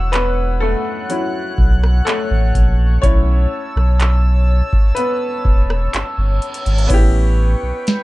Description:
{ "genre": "contemporary R&B", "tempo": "62 BPM", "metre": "4/4", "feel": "straight", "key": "unclear", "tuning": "A4 = 441 Hz", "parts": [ { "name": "clear baby grand piano", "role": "accompaniment", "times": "0.0-8.0 s", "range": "F#3 to C#5", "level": "-22 LUFS", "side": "left 1 dB", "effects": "none" }, { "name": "chorused pulse-width pad", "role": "sustained chords", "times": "0.0-8.0 s", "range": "B4 to F#6", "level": "-25 LUFS", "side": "left 2 dB", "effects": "none" }, { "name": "warm sub bass", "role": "bass", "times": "0.0-7.7 s", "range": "E1 to B1", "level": "-15 LUFS", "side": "equal", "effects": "none" }, { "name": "booming analog drum machine", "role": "drums", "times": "0.1-8.0 s", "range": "crash cymbal, handclaps, hi-hat, kick drum, rim click, snare drum", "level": "-15 LUFS", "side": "equal", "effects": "overdrive, vintage 12-bit sampler grit" }, { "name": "reverse cymbal", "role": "sound effects", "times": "6.2-6.9 s", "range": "none", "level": "-30 LUFS", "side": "right 3 dB", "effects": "none" } ], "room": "light reverb", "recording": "dark, warm production", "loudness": "-13 LUFS", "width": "side -18 dB against mid", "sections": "0.0-6.9 A section; 6.9-8.0 B section", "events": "grand piano solo 0.0-6.9; reverse cymbal 6.2-6.9", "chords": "0.0 Dmaj9 (rootless); 3.0 B9sus4; 6.9 A9" }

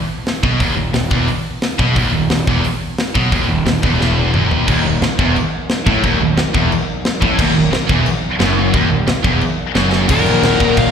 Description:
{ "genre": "heavy metal", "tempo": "177 BPM", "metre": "4/4", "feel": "straight", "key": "Eb minor", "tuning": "A4 = 441 Hz", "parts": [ { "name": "tight metal drum kit", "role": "drums", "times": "0.3-10.9 s", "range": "china cymbal, crash cymbal, hi-hat, kick drum, snare drum, toms", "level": "-19 LUFS", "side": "equal", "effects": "none" }, { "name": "high-gain distorted guitar", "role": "riff", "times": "0.4-10.9 s", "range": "D#2 to Eb3", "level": "-20 LUFS", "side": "left 12 dB", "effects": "distortion, slapback echo" }, { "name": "scooped high-gain guitar", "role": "riff", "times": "0.4-10.9 s", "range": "D#2 to Eb3", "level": "-20 LUFS", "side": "right 12 dB", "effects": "distortion, slapback echo" }, { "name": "fuzz picked electric bass", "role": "bass", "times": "0.4-10.9 s", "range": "D#1 to B1", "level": "-18 LUFS", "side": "equal", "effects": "overdrive" }, { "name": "dark analog pad", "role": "sustained chords", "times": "4.7-10.9 s", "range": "Gb3 to Bb4", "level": "-28 LUFS", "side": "right 1 dB", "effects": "none" }, { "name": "crunchy overdriven guitar", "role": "riff", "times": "4.7-10.9 s", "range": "Eb2 to Eb3", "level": "-19 LUFS", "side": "left 1 dB", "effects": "slapback echo" }, { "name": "high-gain lead guitar", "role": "melody", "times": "10.1-10.9 s", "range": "Bb4 to F5", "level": "-16 LUFS", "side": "left 3 dB", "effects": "distortion, slapback echo" }, { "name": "high-gain lead guitar", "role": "second line", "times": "10.1-10.9 s", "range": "Gb4 to Bb4", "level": "-27 LUFS", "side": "right 4 dB", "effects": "none" } ], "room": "light reverb", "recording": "live gig heard through the venue's PA, recital hall reverb", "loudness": "-13 LUFS", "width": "side -7 dB against mid", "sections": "0.0-4.7 A section; 4.7-10.1 B section", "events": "drum fill 4.0-4.7, 9.9", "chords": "0.0 Badd11/D#; 4.7 Ebm" }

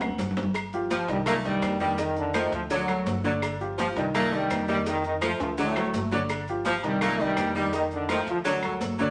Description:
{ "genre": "latin, salsa", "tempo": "167 BPM", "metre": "4/4", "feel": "straight", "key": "unclear", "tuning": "A4 = 440 Hz", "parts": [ { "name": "dark grand piano", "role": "accompaniment", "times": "0.0-9.1 s", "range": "D3 to F#5", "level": "-33 LUFS", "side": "equal", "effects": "none" }, { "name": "upright bass", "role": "bass", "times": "0.0-9.1 s", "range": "G1 to F2", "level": "-39 LUFS", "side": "equal", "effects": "none" }, { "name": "bongos and cowbell", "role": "percussion", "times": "0.0-9.0 s", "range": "none", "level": "-43 LUFS", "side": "equal", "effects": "none" }, { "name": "claves", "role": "percussion", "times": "0.0-8.8 s", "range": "none", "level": "-39 LUFS", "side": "equal", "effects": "none" }, { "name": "maracas", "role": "percussion", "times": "0.0-9.1 s", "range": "none", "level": "-47 LUFS", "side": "equal", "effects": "none" }, { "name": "timbales and agogo bells", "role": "percussion", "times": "0.0-9.1 s", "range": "none", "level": "-39 LUFS", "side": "equal", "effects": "none" }, { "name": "congas", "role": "percussion", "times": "0.1-9.1 s", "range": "none", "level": "-36 LUFS", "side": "equal", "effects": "none" }, { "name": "bright trombone section", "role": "melody", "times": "0.9-9.0 s", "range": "F#2 to F4", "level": "-30 LUFS", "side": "equal", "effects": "none" }, { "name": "bright saxophone section", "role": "second line", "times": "0.9-9.1 s", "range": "F3 to A3", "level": "-33 LUFS", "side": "equal", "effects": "none" } ], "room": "wet studio reverb, RT60 0.9 s", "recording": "none", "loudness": "-27 LUFS", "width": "mono", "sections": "0.6-9.1 A section", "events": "drum fill 0.0-0.6, 5.4-6.3", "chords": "0.0 D; 0.6 Cmadd11/G; 1.3 Cm7; 2.0 F7; 2.7 D; 3.4 G5; 4.1 Cm7; 4.9 F7; 5.6 D; 6.3 G5; 7.0 Cm7; 7.7 F7; 8.5 D" }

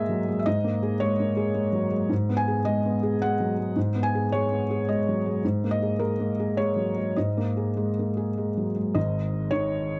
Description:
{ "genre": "neoclassical minimalist piano", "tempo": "98-110 BPM", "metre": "3/4", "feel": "rubato", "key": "G# minor", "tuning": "A4 = 440 Hz", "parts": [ { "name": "felt-muted upright piano", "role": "solo", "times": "0.0-10.0 s", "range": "G#1 to G#5", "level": "-26 LUFS", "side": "equal", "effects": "none" } ], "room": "light reverb", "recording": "dry, close 1970s-style studio recording", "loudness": "-26 LUFS", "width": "mono", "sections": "0.0-9.0 A section; 9.0-10.0 B section", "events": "none", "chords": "0.0 D#sus4/G#; 2.1 G#m; 5.4 D#sus4/G#; 9.0 G#5" }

